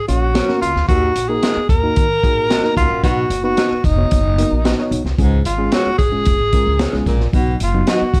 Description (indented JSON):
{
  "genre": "uptempo 1960s-style soul",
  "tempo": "112 BPM",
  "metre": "4/4",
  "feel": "straight",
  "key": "unclear",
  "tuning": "A4 = 440 Hz",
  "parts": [
    { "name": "breathy tenor saxophone", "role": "melody", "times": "0.0-8.2 s", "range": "D#4 to A#4", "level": "-21 LUFS", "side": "equal", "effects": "none" },
    { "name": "reed electric piano", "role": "accompaniment", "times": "0.1-8.0 s", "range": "F#3 to C#5", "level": "-25 LUFS", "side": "equal", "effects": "fast tremolo" },
    { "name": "upright bass", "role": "bass", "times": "0.1-8.2 s", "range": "E#1 to D#3", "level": "-22 LUFS", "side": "equal", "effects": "none" },
    { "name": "crunchy breakbeat drum kit", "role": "drums", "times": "0.1-8.2 s", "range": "hi-hat, kick drum, snare drum", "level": "-21 LUFS", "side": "equal", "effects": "none" },
    { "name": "electric guitar through a small old amp", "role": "stabs", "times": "0.3-8.0 s", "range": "E#4 to D#5", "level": "-26 LUFS", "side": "equal", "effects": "analog chorus" },
    { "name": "clear baritone saxophone", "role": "riff", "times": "0.9-7.6 s", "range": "D#2 to B2", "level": "-27 LUFS", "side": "equal", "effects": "none" }
  ],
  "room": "light reverb",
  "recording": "dark, warm production",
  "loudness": "-16 LUFS",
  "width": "mono",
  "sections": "0.0-8.2 A section",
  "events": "none",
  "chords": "0.0 F#; 0.9 D#m; 3.0 B; 5.2 C#; 7.3 B"
}